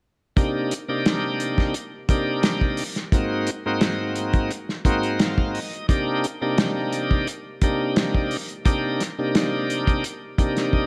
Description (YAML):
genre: straight-eighth soul blues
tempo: 87 BPM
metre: 4/4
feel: straight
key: C minor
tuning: A4 = 440 Hz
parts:
  - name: bright tonewheel organ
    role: accompaniment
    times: 0.4-10.9 s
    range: Ab2 to F5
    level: -26 LUFS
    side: equal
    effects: overdrive, slow rotary speaker
  - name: warm soul drum kit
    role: drums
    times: 0.4-10.9 s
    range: hi-hat, kick drum, snare drum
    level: -24 LUFS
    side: equal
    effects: none
room: moderate echo chamber reverb, RT60 2.3 s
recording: none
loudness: -23 LUFS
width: mono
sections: 0.4-10.9 A section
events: tonewheel organ fill 4.9-5.9, 10.4-10.9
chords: 0.4 Cm7; 3.1 Ab7; 5.9 Cm7